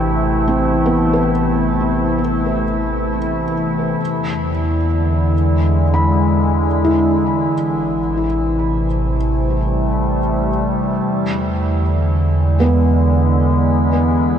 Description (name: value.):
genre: ambient.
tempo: 68 BPM.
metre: 4/4.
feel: straight.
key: unclear.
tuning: A4 = 436 Hz.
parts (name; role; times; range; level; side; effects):
evolving wavetable pad; sustained chords; 0.0-14.4 s; C3 to E4; -18 LUFS; left 1 dB; chorus, built-in reverb, shimmer reverb.
felt-muted upright piano; arpeggios; 0.0-14.4 s; B3 to B5; -22 LUFS; equal; ping-pong delay, shimmer reverb.
warm sub bass; bass; 0.0-14.4 s; A1 to E2; -19 LUFS; right 1 dB; none.
room: moderate huge ambient reverb, RT60 8.0 s.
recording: cassette tape.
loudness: -14 LUFS.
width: side -8 dB against mid.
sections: 0.0-4.0 A section; 4.0-14.4 B section.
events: none.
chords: 0.0 Amadd9; 4.0 E7; 7.5 Am7; 11.1 E7.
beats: | 0.47 1.35 2.23 3.12 | 4.00 4.88 5.76 6.65 | 7.53 8.41 9.29 10.18 | 11.06 11.94 12.82 13.71.